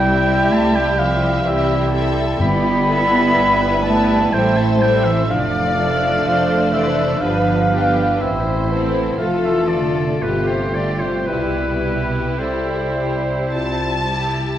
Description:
classical, slow romantic movement for symphony orchestra; 50-64 BPM; 3/4; rubato; C major; A4 = 442 Hz
warm symphonic violin section; melody; 0.0-14.6 s; G4 to A5; -27 LUFS; left 3 dB
clear clarinet; second line; 0.0-14.6 s; D4 to A4; -27 LUFS; equal
clear oboe; second line; 0.0-14.1 s; B4 to B5; -23 LUFS; right 1 dB
mellow hollow silver concert flute; second line; 0.0-14.1 s; B4 to B5; -26 LUFS; left 2 dB
warm symphonic violin section; second line; 0.0-14.1 s; E4 to D5; -26 LUFS; left 3 dB
clear symphonic viola section; accompaniment; 0.0-14.6 s; G3 to A4; -28 LUFS; equal
mellow bassoon; accompaniment; 0.0-14.2 s; G3 to C4; -25 LUFS; right 1 dB
mellow French horn section; sustained chords; 0.0-14.2 s; G3 to F4; -26 LUFS; left 4 dB
clear symphonic double bass section; bass; 0.0-14.5 s; F1 to C2; -23 LUFS; right 2 dB
rich symphonic cello section; bass; 0.0-14.1 s; B2 to B3; -24 LUFS; right 2 dB
timpani; percussion; 0.0-3.8 s; G2 to C3; -26 LUFS; left 1 dB
wet scoring stage reverb, RT60 1.6 s; worn, warbling old tape, cassette tape, warbly pitch drift; -15 LUFS; side -11 dB against mid
0.0-14.6 A section
0.0 C; 2.4 Em/G; 4.3 Am; 5.3 Dm/F; 7.2 G; 8.2 Am; 9.2 Dm/F; 10.2 G9; 11.3 C

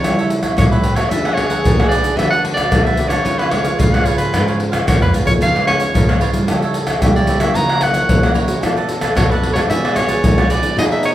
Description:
samba and choro; 112 BPM; 4/4; straight; A4 = 440 Hz
bright soprano saxophone; melody; 0.0-11.1 s; B4 to A#5; -20 LUFS; right 1 dB
breathy trombone; second line; 0.0-11.1 s; D#4 to A4; -25 LUFS; right 2 dB
cavaquinho; accompaniment; 0.0-11.1 s; D4 to F#5; -26 LUFS; right 4 dB
nylon-string guitar; accompaniment; 0.0-11.1 s; F#2 to G#4; -23 LUFS; equal
nylon-string guitar; bass; 0.0-11.1 s; G#2 to D3; -24 LUFS; equal
egg shaker, surdo, pandeiro and tamborim; percussion; 0.0-11.1 s; -16 LUFS; left 1 dB
moderate large studio reverb, RT60 1.1 s; band playing live in one room; -13 LUFS; side -13 dB against mid
0.0-11.1 A section
drum fill 4.7-5.4
0.0 A7/C#; 1.1 D6; 2.2 Bm7/D; 3.3 C#7; 6.5 A7/C#; 7.6 F#7/C#; 8.6 Bm7; 9.7 G#m7b5/B

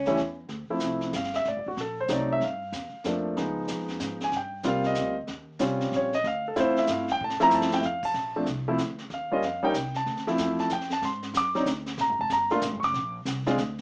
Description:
jazz, small-group swing and bop; 188 BPM; 3/4; swing 64% on 8ths; D minor; A4 = 440 Hz
upright bass; bass; 0.0-13.8 s; D1 to A2; -37 LUFS; equal
clear concert grand piano; accompaniment; 0.1-13.6 s; E3 to D6; -25 LUFS; equal
vintage brush drum kit; drums; 0.1-13.8 s; brushed snare drum, crash cymbal, hi-hat, kick drum, snare drum; -35 LUFS; equal
moderate studio reverb, RT60 0.5 s; worn, warbling old tape, cassette tape, warbly pitch drift, small speaker sound; -25 LUFS; side -31 dB against mid
0.5-8.2 A section; 8.2-13.8 A section
drum fill 7.2-7.8
0.0 A7; 0.5 Dm9; 1.5 D7b9; 2.4 Gm7; 3.4 C#9; 4.3 Eb6; 5.3 Eb13; 6.2 Dm9; 8.2 Bbmaj9; 9.1 Eb9; 10.1 Dm9; 11.0 G#7#11; 12.0 Gm9; 12.9 Bb

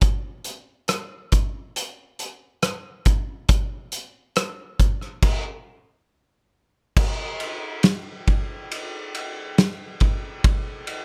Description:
pop; 69 BPM; 4/4; straight
loose indie drum kit; drums; 0.0-11.0 s; crash cymbal, hi-hat, kick drum, ride cymbal, rim click, snare drum; -23 LUFS; equal
little or no reverb; -24 LUFS; mono
0.0-7.0 A section; 7.0-11.0 B section
stop 5.2-7.0

